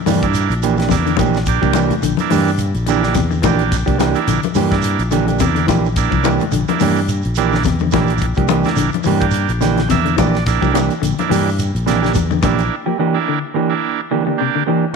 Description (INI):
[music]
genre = afrobeat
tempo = 107 BPM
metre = 4/4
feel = swing 56% on 16ths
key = C mixolydian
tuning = A4 = 440 Hz
[part]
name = semi-hollow electric guitar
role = arpeggios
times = 0.1-14.8 s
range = C3 to F3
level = -22 LUFS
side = left 12 dB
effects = lush chorus
[part]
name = mellow electric guitar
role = stabs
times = 0.1-14.8 s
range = E3 to G4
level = -19 LUFS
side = right 9 dB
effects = none
[part]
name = fingered electric bass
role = bass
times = 0.1-12.7 s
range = Bb1 to G2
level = -19 LUFS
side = left 1 dB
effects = none
[part]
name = tight funk drum kit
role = drums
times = 0.1-12.7 s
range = hi-hat, kick drum, snare drum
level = -24 LUFS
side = left 2 dB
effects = none
[part]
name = congas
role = percussion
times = 0.1-12.6 s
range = none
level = -22 LUFS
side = left 14 dB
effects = none
[part]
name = shekere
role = percussion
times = 0.1-12.7 s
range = none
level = -27 LUFS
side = right 7 dB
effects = none
[part]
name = combo organ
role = accompaniment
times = 0.2-14.6 s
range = Bb3 to G5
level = -22 LUFS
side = right 10 dB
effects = none
[sound]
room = moderate echo chamber reverb, RT60 1.6 s, studio reverb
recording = 1960s-style stereo with parts hard left and right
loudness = -14 LUFS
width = side -5 dB against mid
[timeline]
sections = 0.0-14.9 A section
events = transistor combo organ fill 9.3-10.5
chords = 0.0 C9